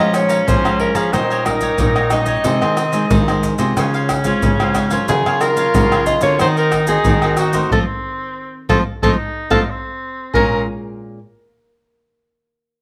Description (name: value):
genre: samba and choro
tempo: 91 BPM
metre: 4/4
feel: straight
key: Bb minor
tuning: A4 = 440 Hz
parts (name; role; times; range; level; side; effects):
- breathy soprano saxophone; melody; 0.0-10.7 s; Gb4 to Eb5; -20 LUFS; equal; plate reverb
- breathy tenor saxophone; second line; 0.0-10.7 s; C4 to F4; -25 LUFS; equal; slapback echo
- cavaquinho; accompaniment; 0.0-10.6 s; Eb4 to Bb5; -26 LUFS; equal; none
- nylon-string guitar; accompaniment; 0.0-11.2 s; Ab2 to Gb4; -26 LUFS; equal; none
- nylon-string guitar; bass; 0.0-10.7 s; Bb2 to F3; -23 LUFS; equal; none
- maracas, pandeiro, tamborim and surdo; percussion; 0.1-10.5 s; none; -22 LUFS; equal; none
room: moderate studio reverb, RT60 0.7 s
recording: none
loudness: -16 LUFS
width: mono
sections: 0.0-10.3 A section; 10.3-12.8 B section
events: band accent 7.7-10.3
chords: 0.0 Bbm7; 1.1 Eb7/Bb; 2.5 Ab/C; 3.8 Dbmaj7; 5.1 Gbmaj7/Db; 6.4 Cm7b5/Eb; 7.7 F7; 10.3 Bbm7